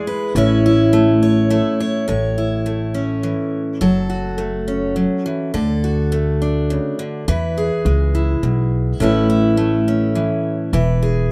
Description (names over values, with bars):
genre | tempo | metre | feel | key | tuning
honky-tonk and classic country | 104 BPM | 3/4 | straight | A major | A4 = 440 Hz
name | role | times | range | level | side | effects
picked steel-string acoustic guitar | accompaniment | 0.0-11.3 s | A2 to C#5 | -20 LUFS | equal | none
upright bass | bass | 0.3-11.3 s | E1 to E2 | -22 LUFS | equal | none
room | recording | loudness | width
little or no reverb | rough home demo mix | -18 LUFS | mono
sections
0.0-2.1 A section; 2.1-11.3 B section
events
none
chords
0.4 A; 3.8 F#m; 5.5 D; 7.3 E; 9.0 Aadd9; 10.7 E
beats
| 0.35 0.93 1.51 | 2.08 2.66 3.24 | 3.81 4.39 4.97 | 5.54 6.12 6.70 | 7.27 7.85 8.43 | 9.00 9.58 10.16 | 10.73 11.31